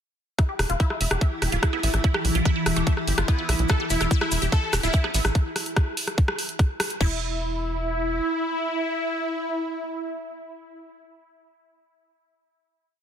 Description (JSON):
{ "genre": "psychedelic trance", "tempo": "145 BPM", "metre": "4/4", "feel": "straight", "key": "E minor", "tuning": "A4 = 438 Hz", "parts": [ { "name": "evolving wavetable pad", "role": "sustained chords", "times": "1.1-5.4 s", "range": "E3 to E4", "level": "-31 LUFS", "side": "equal", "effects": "ensemble chorus, built-in reverb, phaser, sidechain pumping" }, { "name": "wide unison pluck", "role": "riff", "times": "0.4-7.2 s", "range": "E4 to E5", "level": "-31 LUFS", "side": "moving between left 6 dB and right 6 dB", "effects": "auto-pan, sidechain pumping, tape echo" }, { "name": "garage drum kit", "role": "drums", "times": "0.4-7.1 s", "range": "crash cymbal, kick drum", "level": "-21 LUFS", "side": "equal", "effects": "none" }, { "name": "techno drum kit", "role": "drums", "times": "0.4-7.0 s", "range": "hi-hat, rim click", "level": "-28 LUFS", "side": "equal", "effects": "soft clipping on snare" }, { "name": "tight sequencer bass", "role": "bass", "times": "0.6-8.2 s", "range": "D1 to B1", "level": "-26 LUFS", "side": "equal", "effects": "tube saturation" }, { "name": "metallic wobble bass", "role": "second line", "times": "1.7-5.2 s", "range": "A3 to B3", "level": "-38 LUFS", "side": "right 1 dB", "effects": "chorus, vintage 12-bit sampler grit, sidechain pumping, high-pass filter, ping-pong delay" }, { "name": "supersaw stab", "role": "melody", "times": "3.7-11.0 s", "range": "E4 to A4", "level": "-28 LUFS", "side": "equal", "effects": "phaser, cassette tape, sidechain pumping, dub echo" }, { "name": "tube shaker", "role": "percussion", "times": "3.7-5.3 s", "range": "none", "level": "-34 LUFS", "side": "left 6 dB", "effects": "none" } ], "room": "light reverb, digital ambience", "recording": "dense, heavily limited modern master", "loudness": "-22 LUFS", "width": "side -9 dB against mid", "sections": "0.4-7.0 groove; 7.0-10.3 final note", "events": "none", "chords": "0.4 E5; 7.0 N.C.", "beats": "| 0.39 0.80 1.21 1.63 | 2.04 2.45 2.87 3.28 | 3.70 4.11 4.52 4.94 | 5.35 5.76 6.18 6.59 | 7.01 7.42 7.83 8.25 | 8.66 9.07 9.49 9.90" }